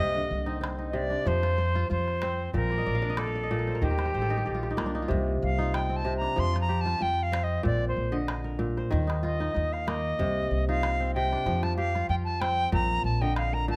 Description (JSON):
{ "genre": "west african traditional, West African string and xylophone music", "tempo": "94 BPM", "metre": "4/4", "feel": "swing 54% on 16ths", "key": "C dorian", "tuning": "A4 = 438 Hz", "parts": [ { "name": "bright reedy silver concert flute", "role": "melody", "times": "0.0-13.8 s", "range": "G4 to C6", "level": "-32 LUFS", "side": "equal", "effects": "none" }, { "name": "kora", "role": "arpeggios", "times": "0.0-13.8 s", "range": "Bb2 to F5", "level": "-34 LUFS", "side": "equal", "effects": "none" }, { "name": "upright bass", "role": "bass", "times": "0.0-13.8 s", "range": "A1 to F2", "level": "-32 LUFS", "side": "equal", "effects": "none" }, { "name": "calabash", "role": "percussion", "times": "0.6-13.8 s", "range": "none", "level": "-37 LUFS", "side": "equal", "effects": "none" } ], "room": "light reverb", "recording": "close, detailed microphones", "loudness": "-28 LUFS", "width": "mono", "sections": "0.0-5.1 A section; 5.1-13.8 B section", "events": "kora fill 2.7-5.1; flute solo 5.1-13.8", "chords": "0.0 Cm; 1.3 F5; 2.5 Bb; 3.8 Eb; 5.1 Cm; 6.4 F5; 7.6 Bb; 8.9 Eb5; 10.2 Cm; 11.5 F5; 12.7 Bb" }